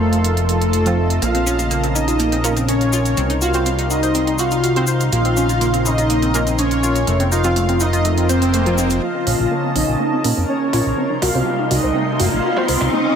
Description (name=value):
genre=melodic techno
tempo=123 BPM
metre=4/4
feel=straight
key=Bb harmonic minor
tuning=A4 = 440 Hz
part: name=wide unison lead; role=melody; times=0.0-13.2 s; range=A3 to F4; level=-21 LUFS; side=equal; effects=wide subtle chorus, cassette tape, digital delay
part: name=soft supersaw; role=second line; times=0.0-13.2 s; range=A4 to F5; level=-25 LUFS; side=equal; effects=low-pass filter, digital delay
part: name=lush unison pad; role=sustained chords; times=0.0-13.2 s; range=C3 to F4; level=-26 LUFS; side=equal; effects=chorus, phaser
part: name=fat analog bass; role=bass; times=0.0-12.9 s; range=F1 to Bb2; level=-20 LUFS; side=equal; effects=none
part: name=granular cloud pad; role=texture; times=0.0-13.2 s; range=Eb4 to C6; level=-27 LUFS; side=left 1 dB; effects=built-in reverb
part: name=electronic hi-hat and percussion blips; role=drums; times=0.1-12.9 s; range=none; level=-26 LUFS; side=right 3 dB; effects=high-pass filter on hats, high-pass filter on perc, high-pass filter on room
part: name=synth brass stab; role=stabs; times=0.9-12.7 s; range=F3 to C5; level=-28 LUFS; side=right 2 dB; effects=none
part: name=analog pluck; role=arpeggios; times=1.2-13.1 s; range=A3 to C5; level=-24 LUFS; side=equal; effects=chorus, digital delay
part: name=cabasa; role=percussion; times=1.2-9.0 s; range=none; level=-27 LUFS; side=left 4 dB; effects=none
part: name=swell and riser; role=sound effects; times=8.2-13.2 s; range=none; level=-26 LUFS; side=right 1 dB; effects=none
room=light reverb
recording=none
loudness=-15 LUFS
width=side -7 dB against mid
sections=0.0-9.0 A section; 9.0-13.2 B section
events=filter sweep on analog synth lead 0.0-9.0, 9.0-13.2; swell 8.2-9.0; build-up 9.0-13.2; riser 9.0-13.2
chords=0.0 F7; 1.2 Bbmadd9; 3.2 Cdim; 5.1 Bbmadd9; 7.1 F7; 9.0 Bbmadd9; 11.0 Cdim